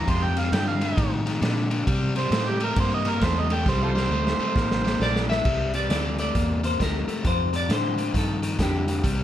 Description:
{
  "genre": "electric blues shuffle",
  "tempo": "134 BPM",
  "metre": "4/4",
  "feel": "swing 64% on 8ths",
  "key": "C mixolydian",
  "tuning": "A4 = 439 Hz",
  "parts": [
    { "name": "overdriven harmonica", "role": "second line", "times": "0.0-5.1 s", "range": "F4 to C6", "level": "-28 LUFS", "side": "right 5 dB", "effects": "none" },
    { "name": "overdriven electric guitar", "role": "riff", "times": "0.0-9.2 s", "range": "F2 to Bb3", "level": "-27 LUFS", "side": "left 4 dB", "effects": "none" },
    { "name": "vintage muted fingered electric bass", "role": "bass", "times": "0.0-9.2 s", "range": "A1 to C3", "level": "-27 LUFS", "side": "right 1 dB", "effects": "none" },
    { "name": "raw garage drum kit", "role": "drums", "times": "0.1-9.2 s", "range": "crash cymbal, hi-hat, kick drum, ride cymbal, snare drum", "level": "-27 LUFS", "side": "right 1 dB", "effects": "none" },
    { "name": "clean electric guitar", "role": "melody", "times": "5.0-9.2 s", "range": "G4 to E5", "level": "-28 LUFS", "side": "left 2 dB", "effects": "none" }
  ],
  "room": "light reverb",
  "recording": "none",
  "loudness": "-21 LUFS",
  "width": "side -11 dB against mid",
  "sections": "0.0-5.4 A section; 5.4-9.2 B section",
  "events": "harmonica solo 0.0-5.4; drum fill 3.7-5.4",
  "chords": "0.1 F9; 1.9 C7; 5.4 C9; 7.2 F9"
}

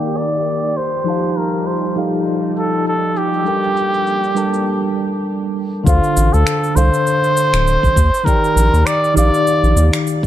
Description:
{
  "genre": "sunset chillout",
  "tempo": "100 BPM",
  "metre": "4/4",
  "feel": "swing 57% on 16ths",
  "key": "unclear",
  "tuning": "A4 = 440 Hz",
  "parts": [
    { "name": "trumpet with cup mute", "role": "melody", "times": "0.0-10.0 s", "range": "F4 to D5", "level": "-18 LUFS", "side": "equal", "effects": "tape echo" },
    { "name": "mellow tine electric piano", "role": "accompaniment", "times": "0.0-10.3 s", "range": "D3 to A5", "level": "-19 LUFS", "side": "equal", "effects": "auto-pan, digital delay" },
    { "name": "soft string machine", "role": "sustained chords", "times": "0.0-4.7 s", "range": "Eb3 to D5", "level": "-26 LUFS", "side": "equal", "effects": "ensemble chorus" },
    { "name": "electronic cabasa and finger snaps", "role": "drums", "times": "0.0-10.3 s", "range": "none", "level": "-25 LUFS", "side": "right 1 dB", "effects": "none" },
    { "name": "round analog bass", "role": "bass", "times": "5.9-9.9 s", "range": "D1 to Eb2", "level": "-13 LUFS", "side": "equal", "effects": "none" },
    { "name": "electronic kick drum", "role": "drums", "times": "5.9-10.3 s", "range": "none", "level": "-16 LUFS", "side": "equal", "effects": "none" }
  ],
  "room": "light reverb, digital ambience",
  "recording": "low-pass filter, lossy compression artefacts",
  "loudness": "-14 LUFS",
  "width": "side -12 dB against mid",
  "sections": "0.0-5.9 A section; 5.9-10.3 B section",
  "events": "filter sweep on tine electric piano 0.0-5.9; filter sweep 0.0-5.9; break 4.7-5.9",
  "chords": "0.0 Ebmaj7; 0.8 F9; 3.5 Gm7; 5.9 Dm7; 8.0 Ebmaj7"
}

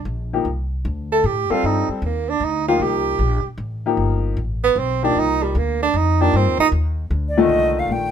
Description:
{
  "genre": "modal jazz",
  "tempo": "153 BPM",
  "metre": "3/4",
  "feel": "swing 66% on 8ths",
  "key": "C dorian",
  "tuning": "A4 = 440 Hz",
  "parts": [
    { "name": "breathy tenor saxophone", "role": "second line", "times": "0.0-6.7 s", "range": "G3 to A4", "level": "-19 LUFS", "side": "right 6 dB", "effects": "none" },
    { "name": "upright bass", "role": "bass", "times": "0.0-8.1 s", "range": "G1 to A2", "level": "-22 LUFS", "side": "left 1 dB", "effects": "none" },
    { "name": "warm upright piano", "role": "accompaniment", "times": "0.3-8.1 s", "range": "Bb2 to A4", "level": "-20 LUFS", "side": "left 6 dB", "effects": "none" },
    { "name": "silver concert flute", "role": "melody", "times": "7.3-8.1 s", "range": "D5 to G5", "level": "-20 LUFS", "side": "right 2 dB", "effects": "none" }
  ],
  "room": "light reverb",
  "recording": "minimal, uncompressed stereo recording",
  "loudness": "-17 LUFS",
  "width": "side -8 dB against mid",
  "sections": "0.0-7.5 A section",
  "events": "tenor saxophone solo 0.0-7.5",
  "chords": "0.0 Cm9"
}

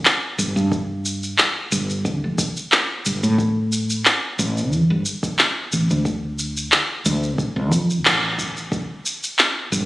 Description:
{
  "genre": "organic downtempo",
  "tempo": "90 BPM",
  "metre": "4/4",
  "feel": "swing 53% on 16ths",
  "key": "unclear",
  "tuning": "A4 = 440 Hz",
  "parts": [
    { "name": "electronic handclaps and shaker", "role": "drums", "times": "0.1-9.9 s", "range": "none", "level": "-19 LUFS", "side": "equal", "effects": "none" },
    { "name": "woody fretless electric bass", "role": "bass", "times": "0.4-9.9 s", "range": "F1 to A2", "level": "-20 LUFS", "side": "equal", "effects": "sidechain pumping" },
    { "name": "electronic kick drum", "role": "drums", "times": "0.7-8.9 s", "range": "none", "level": "-25 LUFS", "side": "equal", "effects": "none" }
  ],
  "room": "moderate echo chamber reverb, RT60 1.8 s",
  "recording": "recorded on a phone in the room, studio reverb, compression",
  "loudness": "-18 LUFS",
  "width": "side -19 dB against mid",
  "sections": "0.0-8.7 A section; 8.7-9.9 A section",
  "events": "band accent 8.1-8.4",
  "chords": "none"
}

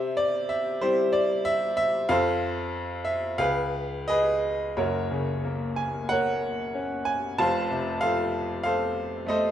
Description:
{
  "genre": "classical, lyrical solo piano",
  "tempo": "84-97 BPM",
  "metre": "4/4",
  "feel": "rubato",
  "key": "unclear",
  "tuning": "A4 = 439 Hz",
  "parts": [
    { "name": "bright upright piano", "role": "solo", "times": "0.0-9.5 s", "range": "F1 to A5", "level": "-24 LUFS", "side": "equal", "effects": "none" }
  ],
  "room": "moderate recital hall reverb, RT60 1.5 s",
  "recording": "minimal, uncompressed stereo recording",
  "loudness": "-24 LUFS",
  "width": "side -10 dB against mid",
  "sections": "0.0-4.8 A section; 4.8-9.5 B section",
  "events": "none",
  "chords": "0.0 C; 2.1 F; 3.4 Db7; 4.8 Gb; 7.4 F"
}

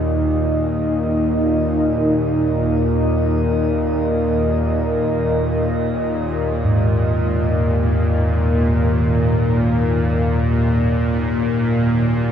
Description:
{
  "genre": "dark ambient drone",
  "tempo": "free time",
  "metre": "none",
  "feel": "none",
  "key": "Eb minor",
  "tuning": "A4 = 440 Hz",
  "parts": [
    { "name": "deep dark ambient pad", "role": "sustained chords", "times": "0.0-12.3 s", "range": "Eb3 to Eb5", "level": "-21 LUFS", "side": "equal", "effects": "chorus, built-in reverb, shimmer reverb" },
    { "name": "bowed-like drone", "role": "drone", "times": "0.0-12.3 s", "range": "Eb2 to Bb2", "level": "-18 LUFS", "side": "equal", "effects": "built-in reverb" },
    { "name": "gamelan-type bossed gongs", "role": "arpeggios", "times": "6.6-12.3 s", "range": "Ab2", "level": "-23 LUFS", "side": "equal", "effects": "none" }
  ],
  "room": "wet cathedral reverb, RT60 5.5 s",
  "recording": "dreamy mix soaked in reverb, cassette tape",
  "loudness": "-16 LUFS",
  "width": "side -8 dB against mid",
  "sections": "0.0-12.3 A section",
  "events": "none",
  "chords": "0.0 Eb5; 9.5 Ebm"
}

